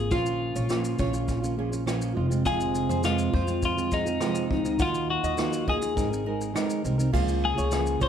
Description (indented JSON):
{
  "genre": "acoustic pop",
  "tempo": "102 BPM",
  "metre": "4/4",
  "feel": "straight",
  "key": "Db major",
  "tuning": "A4 = 440 Hz",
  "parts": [
    { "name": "twelve-string electric guitar", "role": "melody", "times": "0.0-8.1 s", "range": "Eb4 to C5", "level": "-29 LUFS", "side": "left 6 dB", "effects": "none" },
    { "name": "fingerpicked plugged-in steel-string acoustic guitar", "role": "accompaniment", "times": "0.0-8.1 s", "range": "F2 to Bb4", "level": "-29 LUFS", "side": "right 5 dB", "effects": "none" },
    { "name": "upright bass", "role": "bass", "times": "0.0-8.1 s", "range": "F1 to F2", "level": "-30 LUFS", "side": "left 1 dB", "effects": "none" },
    { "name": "nylon-string guitar", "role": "arpeggios", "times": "0.1-8.1 s", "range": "Ab4 to Gb5", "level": "-35 LUFS", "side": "right 4 dB", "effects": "none" },
    { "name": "vintage brush drum kit", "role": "drums", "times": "0.1-8.1 s", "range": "crash cymbal, kick drum, rim click, shaker", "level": "-32 LUFS", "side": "left 1 dB", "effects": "none" }
  ],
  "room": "moderate studio reverb, RT60 0.9 s",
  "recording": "none",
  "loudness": "-24 LUFS",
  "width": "side -8 dB against mid",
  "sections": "0.0-7.1 A section",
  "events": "none",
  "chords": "0.1 Bbm; 2.2 Fm; 4.8 Ebmadd9; 6.0 Abadd9; 7.1 Db6"
}